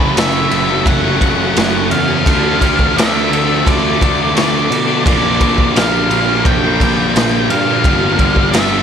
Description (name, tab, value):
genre	quiet-loud alternative rock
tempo	86 BPM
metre	4/4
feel	straight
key	unclear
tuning	A4 = 439 Hz
part	octave-fuzz lead guitar	melody	0.0-8.8 s	C#5 to G5	-18 LUFS	equal	distortion, slapback echo
part	percussive tonewheel organ	sustained chords	0.0-8.8 s	F4 to A#5	-29 LUFS	equal	none
part	distorted electric guitar	riff	0.0-8.8 s	F#2 to D4	-20 LUFS	left 11 dB	overdrive
part	overdriven electric guitar	riff	0.0-8.8 s	F#2 to D4	-21 LUFS	right 1 dB	slapback echo
part	thick fuzz guitar	riff	0.0-8.8 s	F#2 to D4	-21 LUFS	right 11 dB	distortion, slapback echo
part	fuzz picked electric bass	bass	0.0-8.8 s	F#1 to B2	-20 LUFS	equal	overdrive
part	raw garage drum kit	drums	0.2-8.7 s	kick drum, ride cymbal, snare drum	-15 LUFS	equal	none
room	moderate lush hall reverb, RT60 1.9 s, small room reverb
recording	big arena sound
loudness	-11 LUFS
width	side -8 dB against mid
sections	0.0-8.8 A section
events	none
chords	0.0 F#m; 2.3 Dm; 5.1 A#; 7.8 Gm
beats	0.16 0.86 1.56 | 2.27 2.97 3.67 4.37 | 5.06 5.76 6.46 7.15 | 7.84 8.54